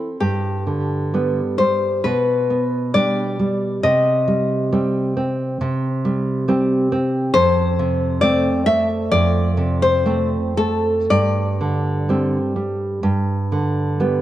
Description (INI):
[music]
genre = romantic duo for nylon-string guitar and classical guitar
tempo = 56-70 BPM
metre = 4/4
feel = rubato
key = unclear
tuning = A4 = 441 Hz
[part]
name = nylon-string guitar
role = melody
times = 0.0-13.9 s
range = G4 to E5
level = -19 LUFS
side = left 3 dB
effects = none
[part]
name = nylon-string guitar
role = accompaniment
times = 0.0-14.2 s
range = F2 to D4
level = -19 LUFS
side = right 2 dB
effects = none
[sound]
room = moderate plate reverb, RT60 2.5 s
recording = worn, warbling old tape, cassette tape, warbly pitch drift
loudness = -17 LUFS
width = side -13 dB against mid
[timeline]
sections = 0.2-14.2 A section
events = none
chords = 0.2 G; 2.1 G/B; 3.8 Cm; 7.3 F; 11.1 Gsus4; 13.0 G